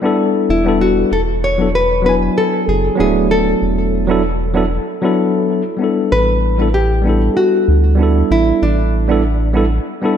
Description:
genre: sunset chillout.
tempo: 96 BPM.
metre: 4/4.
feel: swing 54% on 16ths.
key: unclear.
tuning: A4 = 441 Hz.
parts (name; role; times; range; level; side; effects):
nylon-string guitar; melody; 0.0-9.5 s; D4 to C#5; -18 LUFS; left 1 dB; tape echo.
tine electric piano; accompaniment; 0.0-10.2 s; F#3 to G#5; -16 LUFS; moving between left 5 dB and right 7 dB; auto-pan, low-pass filter, tape echo.
round analog bass; bass; 0.5-9.8 s; D1 to D2; -16 LUFS; equal; none.
room: moderate lush hall reverb, RT60 2.3 s.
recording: dark, warm production.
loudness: -12 LUFS.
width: side -8 dB against mid.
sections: 0.0-10.2 A section.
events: none.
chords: 0.0 A9sus4; 1.1 E9sus4; 6.1 A9sus4.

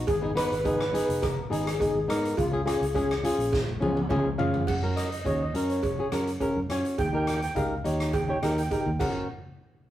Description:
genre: calypso.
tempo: 104 BPM.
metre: 4/4.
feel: straight.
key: F# major.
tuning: A4 = 438 Hz.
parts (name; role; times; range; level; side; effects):
flamenco guitar; accompaniment; 0.0-9.3 s; B3 to C#5; -28 LUFS; left 1 dB; none.
fingered electric bass; bass; 0.0-9.3 s; E#1 to C#3; -32 LUFS; equal; none.
steel pan; melody; 0.1-9.3 s; E#4 to G#5; -32 LUFS; left 1 dB; none.
street-band drum kit; drums; 0.1-9.1 s; crash cymbal, hi-hat, kick drum, rim click, snare drum, toms; -32 LUFS; equal; none.
cowbell; percussion; 0.1-9.3 s; none; -32 LUFS; right 4 dB; none.
room: wet studio reverb, RT60 0.6 s.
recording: rough rehearsal-room recording.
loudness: -24 LUFS.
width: side -13 dB against mid.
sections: 0.0-4.7 A section; 4.7-9.3 B section.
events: drum fill 3.5-4.7.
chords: 0.1 G#m; 2.4 C#; 4.7 F#; 7.0 D#7; 9.0 F#; 9.3 N.C..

